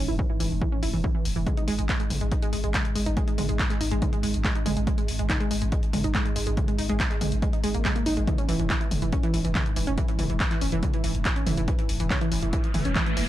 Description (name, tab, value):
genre	driving peak-time techno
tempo	141 BPM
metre	4/4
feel	straight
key	unclear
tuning	A4 = 440 Hz
part	growling 808-style bass	bass	0.0-13.3 s	E1 to G#1	-29 LUFS	equal	overdrive, sidechain pumping, low-pass filter
part	metallic inharmonic drone	drone	0.0-13.3 s	G#2	-37 LUFS	equal	chorus, built-in reverb, sidechain pumping
part	wide unison pluck	riff	0.1-13.2 s	E3 to E4	-29 LUFS	right 1 dB	tube saturation, sidechain pumping, tape echo
part	electronic kick drum	drums	0.2-13.0 s	none	-27 LUFS	equal	none
part	punchy analog drum machine	drums	0.4-13.3 s	handclaps, hi-hat, toms	-31 LUFS	left 1 dB	none
part	riser	sound effects	12.3-13.3 s	none	-33 LUFS	equal	none
room	little or no reverb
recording	dry, gritty hardware recording, transformer saturation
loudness	-23 LUFS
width	side -13 dB against mid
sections	0.0-13.3 A section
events	riser 12.3-13.3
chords	0.0 E; 1.5 G#5; 8.3 E